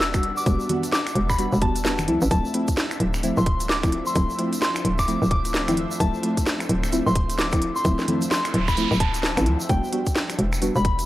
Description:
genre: UK garage, two-step garage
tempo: 130 BPM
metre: 4/4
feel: swing 61% on 16ths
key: unclear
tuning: A4 = 440 Hz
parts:
  - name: soft synth bell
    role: melody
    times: 0.0-11.0 s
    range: G5 to E6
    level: -28 LUFS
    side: left 1 dB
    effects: chorus, tape echo
  - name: soft string machine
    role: sustained chords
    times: 0.0-11.1 s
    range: G3 to F#4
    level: -36 LUFS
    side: equal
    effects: none
  - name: hollow knocking FM bass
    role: bass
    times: 0.0-11.1 s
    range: D1 to D2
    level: -24 LUFS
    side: equal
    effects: none
  - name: garage drum kit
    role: drums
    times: 0.0-11.1 s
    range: congas, finger snaps, hi-hat, snare drum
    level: -27 LUFS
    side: equal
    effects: none
  - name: egg shaker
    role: percussion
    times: 0.0-11.1 s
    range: none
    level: -37 LUFS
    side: right 2 dB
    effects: none
  - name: granular cloud pad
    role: texture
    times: 0.0-11.1 s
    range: F3 to F#5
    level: -35 LUFS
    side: left 1 dB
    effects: built-in reverb, sidechain pumping
  - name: deep mellow chord stab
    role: stabs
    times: 0.1-10.7 s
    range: F3 to F#4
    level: -26 LUFS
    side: equal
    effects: chorus
  - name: electronic kick drum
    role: drums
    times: 0.1-11.0 s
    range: none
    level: -25 LUFS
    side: equal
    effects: none
  - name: noise sweep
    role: sound effects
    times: 8.4-9.7 s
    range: none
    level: -31 LUFS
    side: right 5 dB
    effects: none
room: light reverb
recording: dry, gritty hardware recording, transformer saturation, vinyl crackle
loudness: -20 LUFS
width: side -16 dB against mid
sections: 0.0-11.1 A section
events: noise sweep 8.4-9.7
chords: 0.0 Em9; 2.1 Dm9; 9.7 Em9

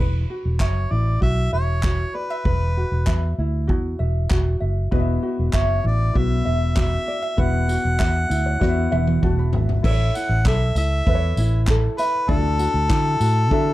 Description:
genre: acoustic pop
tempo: 98 BPM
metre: 4/4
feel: straight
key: unclear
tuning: A4 = 441 Hz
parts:
  - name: ukulele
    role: accompaniment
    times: 0.0-13.7 s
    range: E4 to E5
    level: -28 LUFS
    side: right 1 dB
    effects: none
  - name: vintage muted fingered electric bass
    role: bass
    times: 0.0-13.7 s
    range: E1 to D3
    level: -20 LUFS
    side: equal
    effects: none
  - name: warm harmonica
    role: melody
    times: 0.6-13.7 s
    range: A4 to F#5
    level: -25 LUFS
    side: left 1 dB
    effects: none
  - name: natural country drum kit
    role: drums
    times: 0.6-13.7 s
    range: crash cymbal, handclaps, kick drum, snare drum, tambourine, toms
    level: -23 LUFS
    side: equal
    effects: none
  - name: felt-muted upright piano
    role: accompaniment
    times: 4.9-13.7 s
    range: B3 to B5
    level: -28 LUFS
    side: left 4 dB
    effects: none
room: light reverb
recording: dark, warm production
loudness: -18 LUFS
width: side -16 dB against mid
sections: 0.0-9.8 A section; 9.8-13.7 B section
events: felt piano fill 8.0-9.8; drum fill 8.6-9.8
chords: 0.0 Esus2; 9.8 A; 12.3 Dadd9

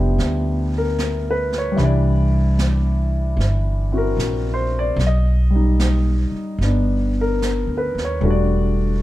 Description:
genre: jazz ballad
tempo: 75 BPM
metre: 4/4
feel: swing 67% on 8ths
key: unclear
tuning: A4 = 440 Hz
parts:
  - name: warm grand piano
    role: accompaniment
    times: 0.0-9.0 s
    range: E3 to D#5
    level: -22 LUFS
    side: left 1 dB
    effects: none
  - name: upright bass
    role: bass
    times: 0.0-9.0 s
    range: E1 to D#2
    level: -18 LUFS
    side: equal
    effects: none
  - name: jazz brush drum kit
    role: drums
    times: 0.2-9.0 s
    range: brushed snare drum, hi-hat, snare drum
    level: -31 LUFS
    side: right 3 dB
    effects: none
room: little or no reverb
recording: dark, warm production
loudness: -17 LUFS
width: side -16 dB against mid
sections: 0.0-9.0 A section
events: none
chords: 0.0 G6; 1.8 Cadd9; 5.0 Baug; 8.2 Em11

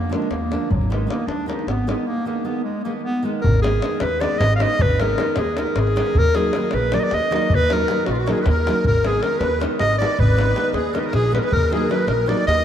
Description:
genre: balkan folk, Balkan wedding band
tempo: 312 BPM (eighths)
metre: 7/8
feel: straight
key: Ab minor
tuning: A4 = 440 Hz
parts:
  - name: clear clarinet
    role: melody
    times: 0.0-12.6 s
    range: Gb3 to F5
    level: -21 LUFS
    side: equal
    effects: none
  - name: upright bass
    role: bass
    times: 0.0-12.6 s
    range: Ab1 to F2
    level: -22 LUFS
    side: equal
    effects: none
  - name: nylon-string guitar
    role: accompaniment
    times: 0.1-12.4 s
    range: D3 to Eb4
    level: -26 LUFS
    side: right 1 dB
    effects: none
  - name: davul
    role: percussion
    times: 0.1-12.6 s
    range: none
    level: -25 LUFS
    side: left 2 dB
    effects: none
  - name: musette accordion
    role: second line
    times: 8.1-12.6 s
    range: F4 to Eb5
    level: -28 LUFS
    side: equal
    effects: none
room: wet cathedral reverb, RT60 5.8 s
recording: in a vast, echoing space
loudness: -17 LUFS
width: side -9 dB against mid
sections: 0.0-3.4 A section; 3.4-12.6 B section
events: break 2.1-3.4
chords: 0.0 Bb; 0.7 Abm; 6.1 Ebm; 8.8 Abm; 11.5 Ebm

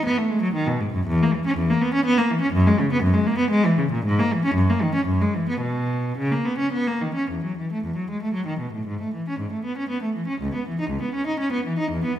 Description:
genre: classical, baroque-style suite movement for unaccompanied cello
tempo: 104-124 BPM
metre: 3/4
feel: rubato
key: E major from 7.3 s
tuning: A4 = 439 Hz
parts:
  - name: rich cello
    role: solo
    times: 0.0-12.2 s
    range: C#2 to D#4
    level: -20 LUFS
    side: equal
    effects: none
room: moderate scoring stage reverb, RT60 1.6 s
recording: minimal, uncompressed stereo recording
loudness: -20 LUFS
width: side -11 dB against mid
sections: 0.0-7.3 A section; 7.3-12.2 A section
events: none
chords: none

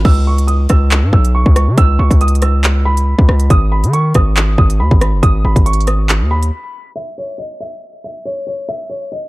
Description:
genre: hip hop, drill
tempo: 139 BPM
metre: 4/4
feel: half-time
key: unclear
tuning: A4 = 439 Hz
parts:
  - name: distorted 808-style bass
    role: bass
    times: 0.0-6.5 s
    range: F#1 to D#3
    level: -12 LUFS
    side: equal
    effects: distortion
  - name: drill drum kit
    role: drums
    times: 0.0-6.5 s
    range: crash cymbal, handclaps, hi-hat, kick drum, rim click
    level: -13 LUFS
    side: equal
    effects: none
  - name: dark concert grand piano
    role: melody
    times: 0.1-9.3 s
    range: C#5 to E6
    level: -21 LUFS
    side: right 2 dB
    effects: low-pass filter
room: little or no reverb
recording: dark, warm production, low-pass filter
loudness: -10 LUFS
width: side -20 dB against mid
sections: 0.0-7.0 A section; 7.0-9.3 B section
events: break 6.5-7.0; filter sweep 7.0-9.3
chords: 0.1 C#m; 3.5 G#m; 7.0 N.C.

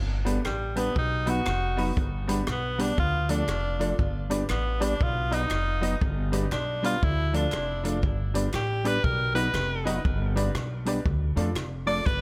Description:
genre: ska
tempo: 119 BPM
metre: 4/4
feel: swing 62% on 8ths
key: G mixolydian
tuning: A4 = 441 Hz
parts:
  - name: upright bass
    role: bass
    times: 0.0-12.2 s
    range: F1 to F2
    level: -31 LUFS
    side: equal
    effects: tube saturation
  - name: bright upright piano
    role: stabs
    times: 0.2-12.0 s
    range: B3 to D#5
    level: -36 LUFS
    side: equal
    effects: tape echo
  - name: mellow electric guitar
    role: accompaniment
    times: 0.3-12.0 s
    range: F3 to D#4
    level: -36 LUFS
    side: equal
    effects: spring reverb
  - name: swinging big-band drum kit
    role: drums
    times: 0.3-12.2 s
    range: hi-hat, kick drum, rim click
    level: -34 LUFS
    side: equal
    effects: none
  - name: bright tenor saxophone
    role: melody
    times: 0.5-12.2 s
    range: G3 to D5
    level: -32 LUFS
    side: equal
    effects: tape echo
  - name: group handclap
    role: percussion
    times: 0.5-11.7 s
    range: none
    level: -49 LUFS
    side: equal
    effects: none
room: light reverb, small room ambience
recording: none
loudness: -27 LUFS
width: mono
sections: 0.0-12.2 A section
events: tenor saxophone solo 0.0-12.2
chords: 0.0 G; 1.0 B; 2.0 G; 3.0 Dm; 4.0 G; 5.0 B; 6.0 G; 7.0 Dm; 8.0 G; 9.0 B; 10.0 G; 11.1 Dm

